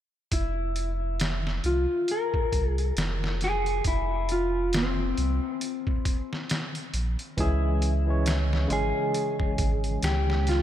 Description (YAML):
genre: trip hop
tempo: 68 BPM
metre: 4/4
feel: swing 58% on 16ths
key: F harmonic minor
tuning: A4 = 440 Hz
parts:
  - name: mellow electric guitar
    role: melody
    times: 0.3-10.6 s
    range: C4 to Bb4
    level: -29 LUFS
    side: left 2 dB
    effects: spring reverb, tape echo
  - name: warm sub bass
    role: bass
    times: 0.3-10.6 s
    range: F1 to Db2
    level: -27 LUFS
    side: equal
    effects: none
  - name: trip hop sampler-style drum kit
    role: drums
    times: 0.3-10.6 s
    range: hi-hat, kick drum, snare drum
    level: -30 LUFS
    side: equal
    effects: none
  - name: barky tine electric piano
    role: accompaniment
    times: 7.4-10.6 s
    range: Db3 to Db5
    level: -30 LUFS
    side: right 1 dB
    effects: medium stereo tremolo, tape echo
room: moderate lush hall reverb, RT60 2.8 s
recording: dreamy mix soaked in reverb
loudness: -24 LUFS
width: side -11 dB against mid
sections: 0.3-10.6 A section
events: none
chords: 0.3 F5; 7.4 Dbm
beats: | 0.32 1.20 2.08 2.96 | 3.85 4.73 5.61 6.50 | 7.38 8.26 9.14 10.02